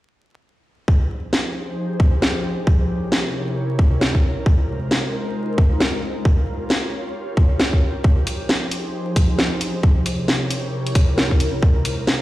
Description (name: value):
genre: UK garage, two-step garage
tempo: 134 BPM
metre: 4/4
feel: swing 61% on 16ths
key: F minor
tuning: A4 = 440 Hz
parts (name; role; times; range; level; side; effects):
- ethereal airy pad; sustained chords; 1.1-12.2 s; C3 to Db5; -25 LUFS; equal; ensemble chorus, built-in reverb, sidechain pumping
- electronic kick drum; drums; 0.9-11.7 s; none; -15 LUFS; equal; studio reverb
- garage drum kit; drums; 1.3-12.2 s; hi-hat, snare drum; -21 LUFS; equal; studio reverb
room: light reverb, digital ambience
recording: played on a big sound system in a bare room, stone room reverb, vinyl crackle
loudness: -17 LUFS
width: side -16 dB against mid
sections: 0.9-12.2 A section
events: none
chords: 0.9 Fm9; 2.7 C7b9; 4.2 Ab69; 6.0 Gm7b5; 8.0 Fm9; 9.8 C7b9; 11.4 Ab69